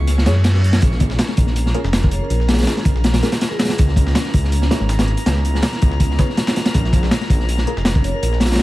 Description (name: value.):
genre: drum and bass, jungle.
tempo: 162 BPM.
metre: 4/4.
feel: straight.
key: Bb minor.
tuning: A4 = 444 Hz.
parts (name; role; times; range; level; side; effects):
granular cloud pad; sustained chords; 0.0-8.6 s; Bb3 to Ab4; -30 LUFS; left 1 dB; built-in reverb.
dark detuned saw bass; bass; 0.0-8.6 s; F1 to Gb2; -18 LUFS; equal; tube saturation.
drifting glass-harmonics texture; texture; 0.0-8.6 s; Bb5 to Db6; -32 LUFS; left 2 dB; chorus, built-in reverb.
crunchy breakbeat drum kit; drums; 0.1-8.6 s; hi-hat, kick drum, snare drum; -17 LUFS; equal; analog delay.
reverse cymbal; sound effects; 0.2-0.8 s; none; -33 LUFS; right 1 dB; none.
deep mellow chord stab; stabs; 0.3-7.7 s; Db4 to Db5; -31 LUFS; left 1 dB; chorus, vintage 12-bit sampler grit, dub echo.
breakbeat sampler-style drum kit; drums; 0.8-8.6 s; hi-hat, snare drum; -32 LUFS; equal; high-pass filter on hats, high-pass filter on snare.
vibraphone with medium mallets; melody; 2.1-3.7, 8.0-8.6 s; F4 to Db5; -29 LUFS; equal; dub echo.
room: small room ambience.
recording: echo-heavy mix, vinyl crackle.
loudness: -14 LUFS.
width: side -17 dB against mid.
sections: 0.0-8.6 A section.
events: break 0.1-0.8; reverse cymbal 0.2-0.8.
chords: 0.0 Dbm7; 0.8 Bbm7; 3.8 Dbm7; 6.7 Bbm7.